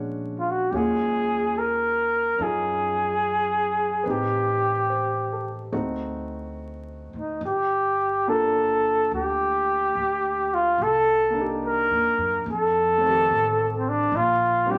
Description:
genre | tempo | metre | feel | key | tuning
jazz ballad | 72 BPM | 4/4 | swing 67% on 8ths | unclear | A4 = 440 Hz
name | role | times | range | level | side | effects
clear baby grand piano | accompaniment | 0.0-14.8 s | Eb3 to C5 | -35 LUFS | equal | none
upright bass | bass | 0.0-14.8 s | G1 to Gb2 | -35 LUFS | equal | none
trumpet with bucket mute | melody | 0.4-14.8 s | C4 to Bb4 | -24 LUFS | equal | none
room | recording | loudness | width
wet large studio reverb, RT60 1.1 s | vinyl crackle | -23 LUFS | mono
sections
0.0-14.8 A section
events
none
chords
0.0 Bb7alt; 0.7 Ebm11; 4.1 Am7b5; 5.7 D7b9; 7.4 Gm9; 10.8 Cm7; 12.5 F9; 14.1 Bb69

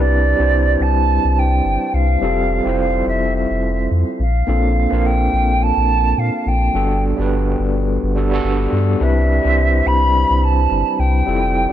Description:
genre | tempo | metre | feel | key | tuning
sunset chillout | 106 BPM | 4/4 | swing 55% on 16ths | C major | A4 = 436 Hz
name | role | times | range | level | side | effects
mellow hollow silver concert flute | melody | 0.0-11.7 s | D5 to B5 | -20 LUFS | right 2 dB | digital delay
overdriven tine electric piano | accompaniment | 0.0-11.7 s | G3 to C5 | -20 LUFS | moving between left 3 dB and right 5 dB | medium tremolo, auto-pan, low-pass filter, digital delay
warm sub bass | bass | 0.0-11.7 s | F1 to Bb2 | -17 LUFS | equal | none
room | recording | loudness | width
light reverb, small room ambience | dark, warm production | -14 LUFS | side -11 dB against mid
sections
0.0-11.7 A section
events
none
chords
0.0 Cmaj9; 2.2 Fmaj9; 4.2 Bbmaj9; 6.7 Gmaj9; 9.0 Cmaj9

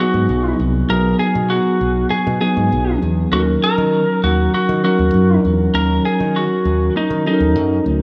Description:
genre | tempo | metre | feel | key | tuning
1980s-style pop | 99 BPM | 4/4 | straight | unclear | A4 = 440 Hz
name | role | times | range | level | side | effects
lightly driven lead guitar | melody | 0.0-7.8 s | D#4 to A#4 | -22 LUFS | equal | none
bell-like tine electric piano | accompaniment | 0.0-8.0 s | F#3 to A#4 | -20 LUFS | equal | none
modern bright fingered electric bass | bass | 0.1-8.0 s | B1 to D#3 | -21 LUFS | equal | none
room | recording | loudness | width
moderate lush hall reverb, RT60 2.8 s | none | -16 LUFS | mono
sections
0.0-8.0 A section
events
none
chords
0.0 G#m7/B; 3.3 D#m7

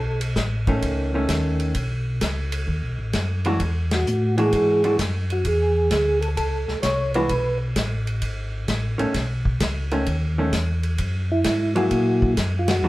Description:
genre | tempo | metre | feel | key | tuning
soul jazz organ trio | 130 BPM | 4/4 | swing 67% on 8ths | B mixolydian | A4 = 440 Hz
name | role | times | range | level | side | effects
percussive tonewheel organ | melody | 0.0-0.2, 3.9-7.6, 11.3-12.9 s | E4 to C#5 | -22 LUFS | right 1 dB | slow rotary speaker, chorus vibrato
mellow tonewheel organ | bass | 0.0-12.9 s | G#1 to A#2 | -24 LUFS | equal | chorus vibrato, slow rotary speaker
warm soul drum kit | drums | 0.2-12.8 s | hi-hat, kick drum, ride cymbal, snare drum | -27 LUFS | equal | none
vintage hollow-body jazz guitar | accompaniment | 0.7-12.9 s | D#3 to G#4 | -24 LUFS | equal | none
room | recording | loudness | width
moderate club reverb, RT60 0.7 s | heard from further back in the room | -20 LUFS | side -18 dB against mid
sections
0.0-12.9 A section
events
band accent 3.8, 12.6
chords
0.0 B9; 3.6 E9; 9.1 B9; 11.0 F#9

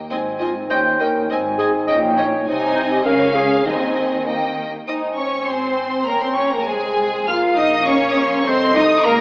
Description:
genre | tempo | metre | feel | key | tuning
quick classical-period movement for symphony orchestra | 100 BPM | 2/4 | rubato | Ab major | A4 = 440 Hz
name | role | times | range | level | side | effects
clear symphonic violin section | melody | 0.1-9.2 s | G5 to F6 | -24 LUFS | equal | none
clear chamber violin section | second line | 0.1-9.2 s | Ab4 to F5 | -26 LUFS | equal | none
flute section | second line | 0.1-9.2 s | Eb5 to Ab5 | -24 LUFS | equal | none
rich studio viola section | accompaniment | 0.1-9.2 s | Ab3 to F4 | -27 LUFS | equal | none
warm bassoon | accompaniment | 0.1-9.2 s | A3 to Db4 | -25 LUFS | equal | none
dark French horn section | sustained chords | 0.1-9.2 s | Ab3 to F4 | -25 LUFS | equal | none
warm studio cello section | bass | 0.1-9.2 s | Eb2 to F4 | -27 LUFS | equal | none
warm studio double bass section | bass | 0.1-9.2 s | Ab1 to Eb2 | -34 LUFS | equal | none
dark clarinet | second line | 0.4-9.2 s | Eb4 to F5 | -21 LUFS | equal | none
timpani | percussion | 3.7-4.2 s | Eb3 | -35 LUFS | equal | none
room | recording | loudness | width
wet scoring stage reverb, RT60 1.4 s | AM radio sound | -15 LUFS | side -28 dB against mid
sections
0.0-4.9 A section; 4.9-9.2 B section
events
none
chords
0.1 Ab; 0.7 Eb7; 1.3 Ab; 1.9 Eb7/Bb; 2.5 Ab/C; 3.1 Db; 3.7 Ab/Eb; 4.3 Eb; 4.9 Ab; 6.1 Gdim/Bb; 6.7 Ab/C; 7.3 Bbm; 8.5 Adim/C

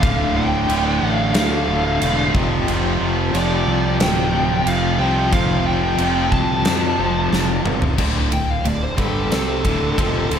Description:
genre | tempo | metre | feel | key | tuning
hard rock | 90 BPM | 4/4 | straight | D minor | A4 = 440 Hz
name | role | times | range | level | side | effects
bluesy overdriven lead guitar | melody | 0.0-10.4 s | A4 to A5 | -23 LUFS | equal | distortion, tape echo
cranked stack guitar | riff | 0.0-10.4 s | D2 to C4 | -24 LUFS | left 8 dB | overdrive, tremolo, slapback echo
heavy high-gain guitar | riff | 0.0-10.4 s | D2 to C4 | -27 LUFS | left 2 dB | distortion, slapback echo
overdriven electric guitar | riff | 0.0-10.4 s | D2 to C4 | -24 LUFS | right 8 dB | spring reverb
fuzz fingered electric bass | bass | 0.0-10.4 s | D1 to F2 | -23 LUFS | equal | overdrive
huge arena drum kit | drums | 0.0-10.4 s | crash cymbal, kick drum, ride cymbal, snare drum, toms | -22 LUFS | equal | none
room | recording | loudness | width
moderate lush hall reverb, RT60 2.2 s | big arena sound | -16 LUFS | side -8 dB against mid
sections
0.0-8.0 A section; 8.0-10.4 B section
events
drum fill 7.3-8.0; lead electric guitar solo 8.0-10.4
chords
0.0 Dm; 2.3 F; 8.0 Dm

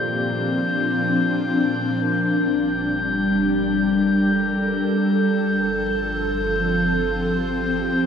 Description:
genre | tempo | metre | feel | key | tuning
ambient | free time | none | none | G minor | A4 = 440 Hz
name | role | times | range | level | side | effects
ethereal airy pad | sustained chords | 0.0-8.1 s | Bb2 to Bb4 | -20 LUFS | equal | ensemble chorus, built-in reverb
overdriven tine electric piano | arpeggios | 0.0-5.2 s | A4 to F5 | -38 LUFS | right 1 dB | diffuse ambient delay
glass harmonica | texture | 0.0-8.1 s | G6 | -25 LUFS | left 3 dB | none
round analog bass | bass | 2.0-8.1 s | G1 | -35 LUFS | equal | none
room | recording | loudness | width
wet huge ambient reverb, RT60 7.9 s | none | -19 LUFS | side -7 dB against mid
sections
0.0-2.0 A section; 2.0-8.1 B section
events
fade-in on analog synth bass 2.0-8.1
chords
0.0 Bbmaj7; 2.0 Gm; 5.1 F/G

